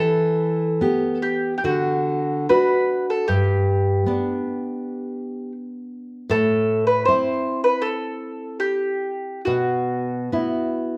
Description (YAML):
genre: romantic duo for mandolin and classical guitar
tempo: 68-81 BPM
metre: 4/4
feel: rubato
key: unclear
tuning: A4 = 440 Hz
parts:
  - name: mandolin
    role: melody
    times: 0.0-11.0 s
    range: F#4 to C5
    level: -24 LUFS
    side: equal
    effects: none
  - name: nylon-string guitar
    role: accompaniment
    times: 0.0-11.0 s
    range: G2 to G4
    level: -26 LUFS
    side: equal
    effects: none
room: moderate large studio reverb, RT60 1.1 s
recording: band playing live in one room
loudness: -22 LUFS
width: mono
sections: 0.0-11.0 A section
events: none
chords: 0.0 Em; 1.6 D; 3.3 G; 6.3 Am; 9.5 Bsus4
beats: 0.81 1.63 2.48 | 3.29 4.06 4.80 5.56 | 6.31 7.07 7.84 8.63 | 9.46 10.32